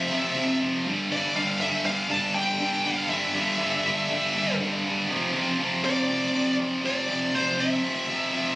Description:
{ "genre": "metal", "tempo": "120 BPM", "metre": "4/4", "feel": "straight", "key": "unclear", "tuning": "A4 = 441 Hz", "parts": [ { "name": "high-gain lead guitar", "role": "melody", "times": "0.0-8.5 s", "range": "C5 to A5", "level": "-27 LUFS", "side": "equal", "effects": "distortion" }, { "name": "high-gain distorted guitar", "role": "riff", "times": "0.0-8.6 s", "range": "F2 to G3", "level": "-24 LUFS", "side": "equal", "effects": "distortion" } ], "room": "light reverb", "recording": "recorded on a phone in the room, studio reverb", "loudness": "-22 LUFS", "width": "side -19 dB against mid", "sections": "0.0-8.6 A section", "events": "half time 0.0-8.6", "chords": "0.0 F5; 0.9 G5; 5.1 F5", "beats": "0.11 0.61 | 1.11 1.61 2.10 2.60 | 3.10 3.60 4.10 4.60 | 5.09 5.59 6.09 6.59 | 7.08 7.58 8.08" }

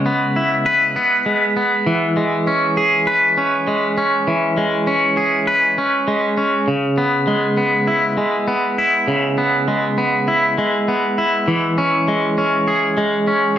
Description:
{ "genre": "rock", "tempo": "100 BPM", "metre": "4/4", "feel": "straight", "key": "unclear", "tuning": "A4 = 440 Hz", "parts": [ { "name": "twangy electric guitar", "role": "solo", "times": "0.0-13.6 s", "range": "C#3 to B4", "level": "-15 LUFS", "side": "equal", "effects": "harmonic tremolo, slapback echo" } ], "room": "moderate recital hall reverb, RT60 1.4 s, digital ambience", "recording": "none", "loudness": "-15 LUFS", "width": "side -10 dB against mid", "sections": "0.0-6.7 A section; 6.7-13.6 B section", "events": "none", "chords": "0.0 C#m7; 1.9 E6; 6.7 C#m7; 11.5 E6", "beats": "0.06 0.66 1.27 | 1.87 2.47 3.07 3.67 | 4.28 4.88 5.48 6.08 | 6.68 7.28 7.88 8.48 | 9.08 9.68 10.28 10.88 | 11.47 12.07 12.67 13.27" }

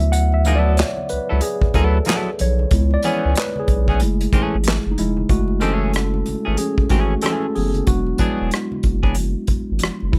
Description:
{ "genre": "R&B, neo-soul", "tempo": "93 BPM", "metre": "4/4", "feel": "swing 61% on 16ths", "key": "F# minor", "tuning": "A4 = 439 Hz", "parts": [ { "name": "tine electric piano", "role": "accompaniment", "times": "0.0-10.2 s", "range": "F#3 to F#5", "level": "-25 LUFS", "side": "equal", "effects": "overdrive" }, { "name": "round analog bass", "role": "bass", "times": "0.0-10.2 s", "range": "E1 to D2", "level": "-22 LUFS", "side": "equal", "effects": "none" }, { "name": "unplugged drum kit", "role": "drums", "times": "0.0-10.2 s", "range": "handclaps, hi-hat, kick drum, rim click, snare drum", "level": "-22 LUFS", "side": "equal", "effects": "none" }, { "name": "congas", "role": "percussion", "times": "0.0-10.2 s", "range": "none", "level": "-35 LUFS", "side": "equal", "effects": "none" }, { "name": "semi-hollow electric guitar", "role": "second line", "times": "0.5-9.2 s", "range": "E3 to A4", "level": "-25 LUFS", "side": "equal", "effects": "subtle chorus" } ], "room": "little or no reverb", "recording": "none", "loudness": "-19 LUFS", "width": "mono", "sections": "0.0-5.3 A section; 5.3-10.2 B section", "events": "tine electric piano solo 0.0-5.3, 5.3-10.2", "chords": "0.0 D69; 2.7 C#m7; 4.0 F#m9; 7.9 E9", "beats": "| 0.13 0.78 1.42 2.07 | 2.71 3.36 4.00 4.65 | 5.29 5.94 6.58 7.23 | 7.87 8.52 9.16 9.81" }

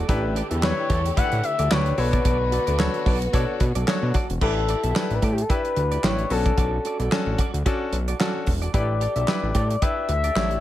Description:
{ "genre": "early-eighties boogie funk", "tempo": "111 BPM", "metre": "4/4", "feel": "swing 56% on 16ths", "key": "unclear", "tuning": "A4 = 439 Hz", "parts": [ { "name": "warm studio string section", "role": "sustained chords", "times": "0.0-4.4 s", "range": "D3 to G4", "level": "-34 LUFS", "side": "equal", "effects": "none" }, { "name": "clean electric guitar", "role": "riff", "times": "0.0-10.6 s", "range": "E4 to E5", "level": "-33 LUFS", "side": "right 6 dB", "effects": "analog chorus" }, { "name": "fat analog bass", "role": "bass", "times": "0.0-10.6 s", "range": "E1 to B2", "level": "-24 LUFS", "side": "equal", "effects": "none" }, { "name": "bright grand piano", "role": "accompaniment", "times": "0.1-10.6 s", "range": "C#4 to C#5", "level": "-30 LUFS", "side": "left 4 dB", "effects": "none" }, { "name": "damped 70s drum kit", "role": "drums", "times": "0.1-10.6 s", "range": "crash cymbal, handclaps, hi-hat, kick drum, snare drum", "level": "-24 LUFS", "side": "right 1 dB", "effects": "gated reverb" }, { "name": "expressive portamento lead", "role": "melody", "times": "0.6-10.6 s", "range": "G4 to F#5", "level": "-26 LUFS", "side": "left 3 dB", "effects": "chorus, slapback echo" } ], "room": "small room ambience", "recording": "none", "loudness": "-20 LUFS", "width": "side -13 dB against mid", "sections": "0.0-4.4 A section; 4.4-10.6 B section", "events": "none", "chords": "0.1 A7sus4; 2.0 Bm7; 4.4 A7sus4; 6.3 Bm7; 8.7 A7sus4", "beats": "| 0.09 0.63 1.17 1.71 | 2.25 2.79 3.33 3.87 | 4.42 4.96 5.50 6.04 | 6.58 7.12 7.66 8.20 | 8.74 9.28 9.82 10.36" }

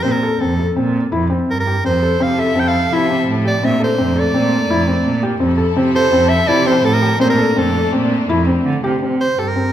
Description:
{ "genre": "contemporary instrumental, chamber music in an uneven meter", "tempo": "167 BPM", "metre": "5/4", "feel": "straight", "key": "unclear", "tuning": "A4 = 438 Hz", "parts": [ { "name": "bright soprano saxophone", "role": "melody", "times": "0.0-9.7 s", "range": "A4 to G5", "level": "-18 LUFS", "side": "right 2 dB", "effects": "none" }, { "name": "felt-muted upright piano", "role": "arpeggios", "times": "0.0-9.7 s", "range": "C4 to A4", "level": "-18 LUFS", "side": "left 2 dB", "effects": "none" }, { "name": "rich cello", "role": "bass", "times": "0.0-9.7 s", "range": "F2 to D3", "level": "-18 LUFS", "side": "right 2 dB", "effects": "none" }, { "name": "rich studio string section", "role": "sustained chords", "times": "1.8-9.0 s", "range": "F3 to A4", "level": "-24 LUFS", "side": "left 2 dB", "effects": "none" } ], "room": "wet recital hall reverb, RT60 1.8 s", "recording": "minimal, uncompressed stereo recording", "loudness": "-13 LUFS", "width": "side -11 dB against mid", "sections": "0.0-9.0 A section", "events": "none", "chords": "0.1 Bbsus2; 1.8 Fmaj7; 3.6 Bbmaj9; 5.4 Fmaj7; 7.2 Bbmaj9; 9.0 C5", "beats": "| 0.05 0.41 0.77 1.12 1.49 | 1.85 2.21 2.57 2.92 3.28 | 3.63 3.99 4.35 4.70 5.06 | 5.41 5.77 6.13 6.49 6.84 | 7.20 7.56 7.92 8.29 8.65 | 9.02 9.38" }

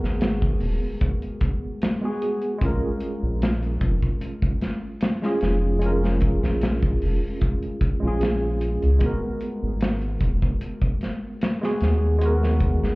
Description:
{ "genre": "trip hop", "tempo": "75 BPM", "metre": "4/4", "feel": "straight", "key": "G# dorian", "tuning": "A4 = 440 Hz", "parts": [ { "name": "tine electric piano", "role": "accompaniment", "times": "0.0-13.0 s", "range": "G#3 to A#4", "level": "-26 LUFS", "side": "equal", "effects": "medium stereo tremolo, harmonic tremolo, tape echo" }, { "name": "round analog bass", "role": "bass", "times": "0.0-13.0 s", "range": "D#1 to D#2", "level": "-23 LUFS", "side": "equal", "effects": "none" }, { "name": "big rock drum kit", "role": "drums", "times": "0.0-13.0 s", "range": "hi-hat, kick drum, snare drum", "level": "-25 LUFS", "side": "equal", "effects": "none" } ], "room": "small room ambience", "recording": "heard muffled through a wall, club reverb, EQ", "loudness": "-21 LUFS", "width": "side -23 dB against mid", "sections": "0.0-13.0 A section", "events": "none", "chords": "0.0 G#m9; 2.6 A#m7; 9.0 G#m9", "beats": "0.21 1.01 1.81 | 2.61 3.41 4.21 5.01 | 5.81 6.61 7.41 8.21 | 9.01 9.81 10.61 11.41 | 12.21" }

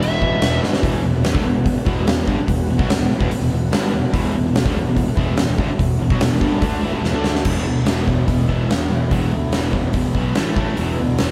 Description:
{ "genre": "hard rock", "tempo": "145 BPM", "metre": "4/4", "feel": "straight", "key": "E minor", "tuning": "A4 = 441 Hz", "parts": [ { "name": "dark smooth lead guitar", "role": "melody", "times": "0.0-0.6 s", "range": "E5", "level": "-24 LUFS", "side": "equal", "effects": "overdrive" }, { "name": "overdriven tonewheel organ", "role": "sustained chords", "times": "0.0-7.4 s", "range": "E3 to F#4", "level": "-36 LUFS", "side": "equal", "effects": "none" }, { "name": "cranked stack guitar", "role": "riff", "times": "0.0-11.3 s", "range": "E2 to D4", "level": "-27 LUFS", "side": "equal", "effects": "overdrive" }, { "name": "cranked stack guitar", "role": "riff", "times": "0.0-11.3 s", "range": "E2 to D4", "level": "-30 LUFS", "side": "equal", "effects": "none" }, { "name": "tight distorted guitar", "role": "riff", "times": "0.0-11.3 s", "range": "E2 to D4", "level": "-29 LUFS", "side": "equal", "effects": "distortion" }, { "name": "fuzz picked electric bass", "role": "bass", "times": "0.0-11.3 s", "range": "E1 to D2", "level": "-25 LUFS", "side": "equal", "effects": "overdrive" }, { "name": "huge arena drum kit", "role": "drums", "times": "0.0-11.3 s", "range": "crash cymbal, hi-hat, kick drum, snare drum", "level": "-22 LUFS", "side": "equal", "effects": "none" } ], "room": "light reverb", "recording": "band playing live in one room", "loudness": "-19 LUFS", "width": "mono", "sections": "0.8-7.5 A section; 7.5-11.3 B section", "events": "drum fill 0.6, 7.0-7.5", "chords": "0.0 Em; 7.5 E5; 10.4 A5; 10.8 E5", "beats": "0.01 0.42 | 0.83 1.24 1.66 2.07 | 2.48 2.90 3.31 3.72 | 4.14 4.55 4.96 5.38 | 5.79 6.21 6.62 7.04 | 7.45 7.87 8.28 8.70 | 9.11 9.53 9.95 10.36 | 10.78 11.19" }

